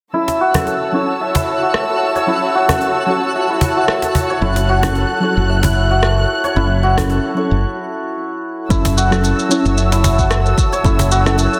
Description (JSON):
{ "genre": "organic downtempo", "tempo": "112 BPM", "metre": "4/4", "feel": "swing 55% on 16ths", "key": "F# minor", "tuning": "A4 = 440 Hz", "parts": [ { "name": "deep mellow chord stab", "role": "accompaniment", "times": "0.1-11.6 s", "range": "F#3 to A4", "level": "-24 LUFS", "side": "equal", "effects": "chorus, sidechain pumping, tape echo" }, { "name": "muted chamber string section", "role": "sustained chords", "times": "0.1-11.6 s", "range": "F#4 to F#6", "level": "-24 LUFS", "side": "equal", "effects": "sidechain pumping" }, { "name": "santur", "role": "arpeggios", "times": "0.1-11.6 s", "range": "E4 to E5", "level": "-21 LUFS", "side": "equal", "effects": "low-pass filter, tape echo" }, { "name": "twinkling granular texture", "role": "texture", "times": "0.5-7.6 s", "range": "F#4 to F#5", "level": "-30 LUFS", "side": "equal", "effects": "built-in reverb" }, { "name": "cajon", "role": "percussion", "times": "0.3-11.5 s", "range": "none", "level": "-23 LUFS", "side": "equal", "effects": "none" }, { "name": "electronic rim click and shaker", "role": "drums", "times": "0.6-11.6 s", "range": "none", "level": "-25 LUFS", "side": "equal", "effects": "soft clipping on snare, low-pass filter on snare, low-pass filter on perc, low-pass filter on room" }, { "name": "mellow fretless electric bass", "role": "bass", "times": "4.4-11.5 s", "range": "F#1", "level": "-18 LUFS", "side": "equal", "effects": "tube saturation, sidechain pumping" }, { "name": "electronic kick drum", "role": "drums", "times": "8.7-11.0 s", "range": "none", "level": "-18 LUFS", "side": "equal", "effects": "overdrive" } ], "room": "wet recital hall reverb, RT60 1.3 s, digital ambience", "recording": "dense, heavily limited modern master", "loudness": "-16 LUFS", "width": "mono", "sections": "0.1-8.7 A section; 8.7-11.6 B section", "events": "filter sweep on santur 0.1-8.7; filter sweep on synth stab 0.1-8.7; break 7.6-8.7", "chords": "0.1 F#m7" }